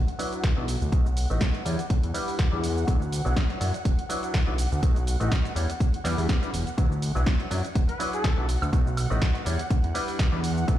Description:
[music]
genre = filtered disco house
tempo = 123 BPM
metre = 4/4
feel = swing 55% on 16ths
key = D major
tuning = A4 = 440 Hz
[part]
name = rich symphonic violin section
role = sustained chords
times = 0.0-10.8 s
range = F#5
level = -38 LUFS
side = right 1 dB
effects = vintage 12-bit sampler grit, sidechain pumping, low-pass filter
[part]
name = fat analog bass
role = bass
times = 0.0-10.8 s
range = D1 to F#2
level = -26 LUFS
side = equal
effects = sidechain pumping, low-pass filter
[part]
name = punchy analog drum machine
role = drums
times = 0.1-10.8 s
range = hi-hat, shaker, snare drum, woodblock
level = -33 LUFS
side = equal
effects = sidechain pumping on hats, sidechain pumping on perc
[part]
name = overdriven clav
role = accompaniment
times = 0.2-10.8 s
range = F#3 to D5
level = -33 LUFS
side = left 1 dB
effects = phaser, vintage 12-bit sampler grit, sidechain pumping, low-pass filter
[part]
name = tambourine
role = percussion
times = 0.2-10.8 s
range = none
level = barely audible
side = none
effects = none
[part]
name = electronic kick drum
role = drums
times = 0.4-10.8 s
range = none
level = -24 LUFS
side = equal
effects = none
[part]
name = bright trumpet section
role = melody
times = 7.9-8.5 s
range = A4 to B4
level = -33 LUFS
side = left 2 dB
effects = sidechain pumping, low-pass filter, ping-pong delay
[sound]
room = little or no reverb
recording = played on a big sound system in a bare room, large studio reverb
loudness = -23 LUFS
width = side -12 dB against mid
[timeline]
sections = 0.0-10.8 A section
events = filter sweep 0.0-10.8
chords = 0.0 D69; 0.9 B7; 1.7 Em7; 2.9 D69; 4.8 B7; 5.6 Em7; 6.8 D69; 8.7 B7; 9.5 Em7

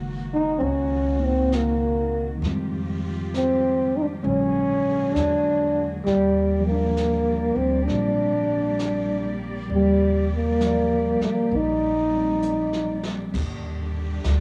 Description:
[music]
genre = jazz ballad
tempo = 66 BPM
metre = 4/4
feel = swing 66% on 8ths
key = Eb major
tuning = A4 = 440 Hz
[part]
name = tine electric piano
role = accompaniment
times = 0.0-13.4 s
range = Db3 to D5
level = -32 LUFS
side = equal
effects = none
[part]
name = warm studio cello section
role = sustained chords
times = 0.0-14.4 s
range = D3 to D5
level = -38 LUFS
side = equal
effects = none
[part]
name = upright bass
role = bass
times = 0.0-14.4 s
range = Gb1 to F2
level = -30 LUFS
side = equal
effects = none
[part]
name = mellow trombone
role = melody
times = 0.3-13.0 s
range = G3 to Eb4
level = -24 LUFS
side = equal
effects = cassette tape
[part]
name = vintage brush drum kit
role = drums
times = 0.6-14.4 s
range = brushed snare drum, crash cymbal, hi-hat, kick drum, snare drum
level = -42 LUFS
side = equal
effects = cassette tape
[sound]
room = light reverb, studio ambience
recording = home recording on cassette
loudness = -23 LUFS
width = mono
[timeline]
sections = 0.0-13.3 A section; 13.3-14.4 B section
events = drum fill 12.4-13.3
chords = 0.0 Gb6; 2.4 Fm9; 4.2 Bb7alt; 6.1 Ebmaj7

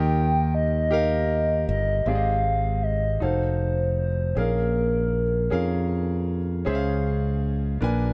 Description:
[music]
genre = slow gospel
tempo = 52 BPM (dotted quarters)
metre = 6/8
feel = straight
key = Ab major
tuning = A4 = 442 Hz
[part]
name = hollow clarinet-like synth lead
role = melody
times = 0.0-6.3 s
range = Bb4 to G5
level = -28 LUFS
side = equal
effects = chorus
[part]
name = clear concert grand piano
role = accompaniment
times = 0.0-8.1 s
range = Ab2 to Ab5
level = -31 LUFS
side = equal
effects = none
[part]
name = modern bright fingered electric bass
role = bass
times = 0.0-8.1 s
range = F1 to F2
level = -27 LUFS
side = equal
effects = none
[sound]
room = little or no reverb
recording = dark, warm production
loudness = -24 LUFS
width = mono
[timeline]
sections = 0.0-2.1 A section; 2.1-8.1 B section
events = none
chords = 0.0 Eb; 2.1 Abmaj7; 3.2 F7b9; 4.4 Bbm7; 6.7 Dbmaj7

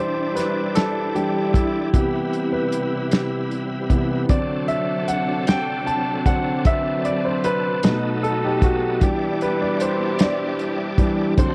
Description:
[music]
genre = slow gospel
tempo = 51 BPM (dotted quarters)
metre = 6/8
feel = straight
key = unclear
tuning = A4 = 439 Hz
[part]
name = warm grand piano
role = accompaniment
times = 0.0-11.5 s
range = B2 to A5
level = -24 LUFS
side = equal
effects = none
[part]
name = bright tonewheel organ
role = sustained chords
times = 0.0-11.5 s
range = C3 to D5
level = -31 LUFS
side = equal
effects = slow rotary speaker, overdrive, chorus vibrato
[part]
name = warm studio string section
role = sustained chords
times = 0.0-11.5 s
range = C3 to B4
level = -34 LUFS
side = equal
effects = none
[part]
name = warm soul drum kit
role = drums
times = 0.4-11.5 s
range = hi-hat, kick drum, snare drum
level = -22 LUFS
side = equal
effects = none
[sound]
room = light reverb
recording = dry, close 1970s-style studio recording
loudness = -21 LUFS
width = mono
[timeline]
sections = 0.0-11.5 A section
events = grand piano solo 0.0-11.5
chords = 0.0 Em7; 1.9 Cmaj7; 4.3 D7; 7.8 B7; 9.0 Em7

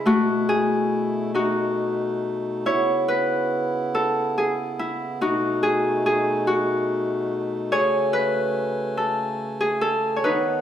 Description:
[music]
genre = celtic folk, Celtic slow air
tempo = 47 BPM (dotted quarters)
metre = 6/8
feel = rubato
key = unclear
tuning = A4 = 440 Hz
[part]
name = Celtic harp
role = accompaniment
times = 0.0-10.6 s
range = A3 to C#5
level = -21 LUFS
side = left 1 dB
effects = none
[part]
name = pedal harmonium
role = sustained chords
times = 0.0-10.6 s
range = B2 to G#5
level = -28 LUFS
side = right 2 dB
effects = none
[sound]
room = wet recital hall reverb, RT60 1.3 s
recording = none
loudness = -20 LUFS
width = side -10 dB against mid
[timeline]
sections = 0.0-10.6 A section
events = harp solo 0.0-10.6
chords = 0.1 B7sus4; 1.3 B7; 2.7 C#m7; 5.2 B7; 7.7 Amaj7

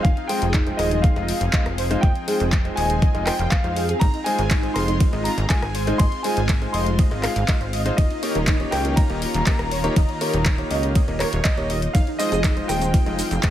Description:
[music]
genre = progressive house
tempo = 121 BPM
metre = 4/4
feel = straight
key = F minor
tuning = A4 = 440 Hz
[part]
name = dark grand piano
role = melody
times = 0.0-13.5 s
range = Db5 to C6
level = -29 LUFS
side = equal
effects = sidechain pumping, digital delay
[part]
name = soft supersaw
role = second line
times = 0.0-13.5 s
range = Db5 to C6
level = -32 LUFS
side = left 2 dB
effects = phaser, sidechain pumping, digital delay
[part]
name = lush unison pad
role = sustained chords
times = 0.0-13.5 s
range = Eb3 to Ab4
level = -31 LUFS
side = equal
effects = chorus, sidechain pumping
[part]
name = soft round pluck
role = arpeggios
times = 0.0-13.1 s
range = Eb4 to F5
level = -29 LUFS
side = equal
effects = ensemble chorus, sidechain pumping, digital delay
[part]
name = plucky analog bass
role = bass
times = 0.0-13.4 s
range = Eb1 to F2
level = -25 LUFS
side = equal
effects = tube saturation, sidechain pumping
[part]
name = electronic kick drum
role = drums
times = 0.0-13.5 s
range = none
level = -19 LUFS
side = equal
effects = overdrive
[part]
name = house drum kit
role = drums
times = 0.0-13.5 s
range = handclaps, hi-hat, ride cymbal, rim click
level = -29 LUFS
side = left 1 dB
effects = none
[part]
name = clear grand piano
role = stabs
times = 0.3-13.5 s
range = Ab3 to Eb5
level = -28 LUFS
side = equal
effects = sidechain pumping, digital delay
[part]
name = maracas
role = percussion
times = 11.9-13.5 s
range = none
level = -34 LUFS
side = right 4 dB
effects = none
[part]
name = twinkling granular texture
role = texture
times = 12.9-13.5 s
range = F4 to F5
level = -36 LUFS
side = right 2 dB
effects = none
[sound]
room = digital ambience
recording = none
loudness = -18 LUFS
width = side -12 dB against mid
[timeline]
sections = 0.0-13.5 A section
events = none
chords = 0.0 Fm7; 4.0 Ab6; 8.0 Eb7; 11.9 Fm7

